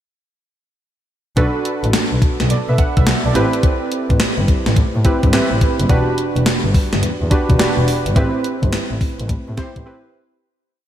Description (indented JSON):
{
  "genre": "R&B, new jack swing",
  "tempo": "106 BPM",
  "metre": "4/4",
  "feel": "swing 65% on 16ths",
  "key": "unclear",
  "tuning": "A4 = 441 Hz",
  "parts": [
    { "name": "warm analog keys", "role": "accompaniment", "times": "1.4-10.4 s", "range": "C4 to F#5", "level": "-20 LUFS", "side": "right 2 dB", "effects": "chorus, slapback echo" },
    { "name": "warm double bass", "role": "bass", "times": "1.4-9.8 s", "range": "E1 to B2", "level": "-19 LUFS", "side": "equal", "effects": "none" },
    { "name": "gated 80s digital drum machine", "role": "drums", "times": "1.4-9.9 s", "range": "handclaps, hi-hat, kick drum, snare drum", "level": "-17 LUFS", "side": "equal", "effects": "gated reverb, gated reverb snare" }
  ],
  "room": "light reverb",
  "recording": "none",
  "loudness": "-14 LUFS",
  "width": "side -11 dB against mid",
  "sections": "1.4-10.4 verse",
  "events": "fade-out 8.2-10.4; break 9.9-10.4",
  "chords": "1.4 Bm7; 3.4 Am7; 5.9 Em7; 8.2 Am7"
}